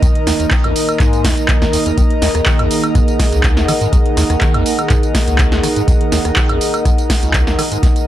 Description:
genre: acid house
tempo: 123 BPM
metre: 4/4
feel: straight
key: Eb minor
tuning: A4 = 440 Hz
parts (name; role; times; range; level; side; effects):
- dark analog pad; sustained chords; 0.0-8.1 s; Eb3 to Gb5; -22 LUFS; right 1 dB; chorus, phaser, sidechain pumping
- liquid acid bass; riff; 0.0-7.9 s; Db2 to Eb3; -19 LUFS; equal; phaser, overdrive, ensemble chorus, sidechain pumping
- electro analog drum machine; drums; 0.0-8.1 s; handclaps, hi-hat, rim click, snare drum, tambourine, woodblock; -19 LUFS; right 1 dB; none
- electronic kick drum; drums; 0.0-7.9 s; none; -14 LUFS; equal; none
- airy breathy pad; texture; 0.0-8.1 s; Eb4 to Eb5; -19 LUFS; equal; chorus, sidechain pumping
room: little or no reverb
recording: dry, gritty hardware recording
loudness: -12 LUFS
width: side -12 dB against mid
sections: 0.0-8.1 A section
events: none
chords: 0.0 Eb5

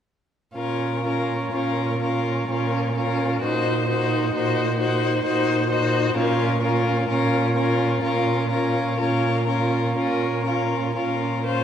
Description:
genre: classical, slow romantic movement for string quartet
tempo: 64 BPM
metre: 3/4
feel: uneven beats, rubato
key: Bb minor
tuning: A4 = 440 Hz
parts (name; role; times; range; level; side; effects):
- rich violin; second line; 0.5-11.6 s; F4 to Gb4; -27 LUFS; left 1 dB; none
- rich violin; melody; 0.6-11.6 s; Bb4 to C5; -27 LUFS; left 7 dB; none
- warm viola; accompaniment; 0.6-11.6 s; Db4 to Eb4; -26 LUFS; right 1 dB; none
- warm cello; bass; 0.6-11.6 s; Bb2; -25 LUFS; right 2 dB; none
room: wet concert hall reverb, RT60 1.9 s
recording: none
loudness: -20 LUFS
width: side -9 dB against mid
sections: 0.6-11.6 A section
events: none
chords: 0.6 Bbm; 3.4 Cm7b5/Bb; 6.2 Bbm

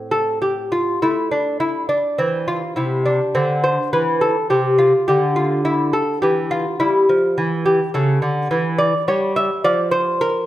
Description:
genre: classical, baroque-style dance for lute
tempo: 105 BPM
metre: 3/4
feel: rubato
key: A minor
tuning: A4 = 438 Hz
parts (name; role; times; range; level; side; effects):
- lute; solo; 0.0-10.5 s; A2 to E5; -16 LUFS; equal; slapback echo
room: moderate recital hall reverb, RT60 1.6 s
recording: none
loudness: -16 LUFS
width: side -14 dB against mid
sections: 0.0-1.0 A section; 1.0-10.5 B section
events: none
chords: 0.0 Am; 1.0 A5; 2.8 Cmaj13; 4.5 C69; 6.2 Em; 7.9 A7/C#; 9.6 Dm/F

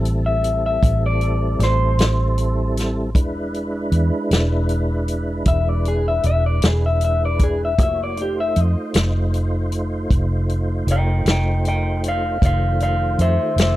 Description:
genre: slow blues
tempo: 52 BPM (dotted quarters)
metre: 12/8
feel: straight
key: unclear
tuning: A4 = 439 Hz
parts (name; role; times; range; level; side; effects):
- electric guitar through a small old amp; melody; 0.0-13.8 s; G4 to G5; -22 LUFS; left 2 dB; none
- tonewheel organ; sustained chords; 0.0-13.8 s; Eb3 to C#5; -26 LUFS; right 1 dB; slow rotary speaker, overdrive, chorus vibrato
- vintage muted fingered electric bass; bass; 0.0-13.8 s; E1 to F2; -20 LUFS; equal; none
- vintage drum kit; drums; 0.1-13.8 s; hi-hat, kick drum, snare drum; -19 LUFS; equal; none
room: studio reverb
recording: dry, close 1970s-style studio recording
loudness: -17 LUFS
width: side -16 dB against mid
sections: 0.0-13.8 A section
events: none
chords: 0.0 Am7; 3.1 E7; 7.8 F7

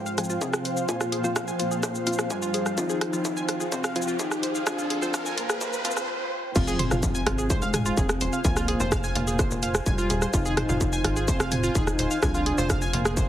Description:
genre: melodic techno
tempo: 127 BPM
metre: 4/4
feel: straight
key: F minor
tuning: A4 = 440 Hz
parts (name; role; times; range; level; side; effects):
- soft octave-layered synth lead; melody; 0.0-13.3 s; G3 to Eb4; -31 LUFS; left 1 dB; chorus, tremolo, sidechain pumping, ping-pong delay
- warm analog pad; sustained chords; 0.0-13.3 s; F3 to Ab5; -35 LUFS; equal; chorus, sidechain pumping
- analog pluck; arpeggios; 0.0-13.3 s; F4 to Ab6; -32 LUFS; right 1 dB; chorus, sidechain pumping, dub echo
- filtered dub chord stab; stabs; 0.0-13.3 s; F3 to F4; -34 LUFS; left 2 dB; chorus, sidechain pumping, dub echo
- riser and impact; sound effects; 1.9-8.4 s; none; -36 LUFS; right 1 dB; none
- ethereal airy pad; texture; 0.0-6.1 s; F4 to G5; -35 LUFS; right 1 dB; ensemble chorus, built-in reverb, sidechain pumping
- techno drum kit; drums; 0.1-13.3 s; crash cymbal, hi-hat, rim click, shaker, toms; -29 LUFS; equal; high-pass filter on perc, high-pass filter on hats, high-pass filter on toms, high-pass filter on snare, high-pass filter on cymbals, high-pass filter on room
- electronic kick drum; drums; 0.4-13.3 s; none; -28 LUFS; equal; distortion, high-pass filter on kick, high-pass filter on room
- tight sequencer bass; bass; 6.6-13.2 s; Eb1 to C2; -30 LUFS; equal; sidechain pumping
room: light reverb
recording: heavily compressed radio sound, multiband compression, high-pass filter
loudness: -23 LUFS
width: side -11 dB against mid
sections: 0.0-6.6 A section; 6.6-13.3 B section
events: build-up 0.0-6.6; filter sweep on synth arpeggio sound 0.0-6.6; filter sweep on soft synth lead 0.0-6.6; riser 1.9-6.1; stop 6.1-6.6; drop 6.6-13.3; impact 6.6-8.4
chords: 0.0 Fm

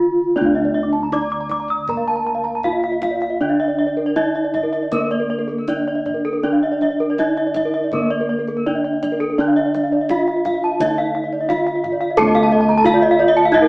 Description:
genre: Balinese gamelan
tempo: 79-88 BPM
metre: 4/4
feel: straight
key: D pelog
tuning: A4 = 440 Hz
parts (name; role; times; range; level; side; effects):
- gamelan-type bronze metallophone; melody; 0.0-13.7 s; Bb3 to D5; -20 LUFS; equal; none
- gamelan-type bronze metallophone; accompaniment; 0.0-13.7 s; D3 to Bb3; -30 LUFS; right 1 dB; none
- gamelan-type bossed gongs; bass; 0.0-13.7 s; D2 to A4; -23 LUFS; equal; none
- gamelan-type bronze metallophone; arpeggios; 0.4-13.6 s; A4 to Eb6+35c; -21 LUFS; equal; none
- gamelan-type bronze metallophone; arpeggios; 0.5-13.7 s; A4 to D6; -23 LUFS; right 1 dB; none
- kendang; percussion; 0.9-13.7 s; none; -35 LUFS; equal; none
room: wet studio reverb, RT60 0.9 s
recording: band playing live in one room, small speaker sound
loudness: -16 LUFS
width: side -26 dB against mid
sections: 0.0-12.2 A section; 12.2-13.7 B section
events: break 0.0-0.4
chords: none

